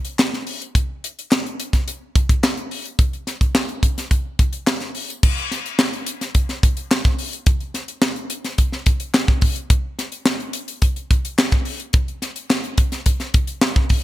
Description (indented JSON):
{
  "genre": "pop",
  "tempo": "107 BPM",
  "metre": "4/4",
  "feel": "straight",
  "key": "none",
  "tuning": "none",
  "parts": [
    { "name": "tight funk drum kit", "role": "drums", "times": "0.0-14.0 s", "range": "crash cymbal, hi-hat, kick drum, snare drum", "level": "-18 LUFS", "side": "equal", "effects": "none" },
    { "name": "group handclap", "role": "percussion", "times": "0.2-13.8 s", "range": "none", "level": "-31 LUFS", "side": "left 2 dB", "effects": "none" }
  ],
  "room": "light reverb, small room ambience",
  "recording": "bright 1980s-style digital production",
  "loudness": "-18 LUFS",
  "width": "side -15 dB against mid",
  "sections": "0.0-5.2 A section; 5.2-14.0 B section",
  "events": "none",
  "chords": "none"
}